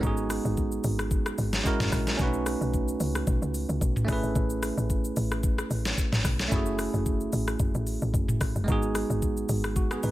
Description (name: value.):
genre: amapiano.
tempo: 111 BPM.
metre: 4/4.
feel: swing 55% on 16ths.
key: F# dorian.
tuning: A4 = 440 Hz.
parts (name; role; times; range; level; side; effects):
bell-like tine electric piano; accompaniment; 0.0-10.1 s; G#3 to B4; -30 LUFS; right 2 dB; none.
woody log drum bass; bass; 0.0-10.1 s; F#1 to C#2; -30 LUFS; equal; none.
smooth R&B drum kit; drums; 0.0-10.1 s; hi-hat, kick drum, rim click, shaker, snare drum, toms; -29 LUFS; left 1 dB; none.
room: little or no reverb.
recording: none.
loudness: -25 LUFS.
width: side -15 dB against mid.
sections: 0.0-10.1 A section.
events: none.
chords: 0.0 G#m7; 1.7 F#9; 2.2 B7; 4.1 Amaj7; 6.5 F#m7; 8.7 G#m7.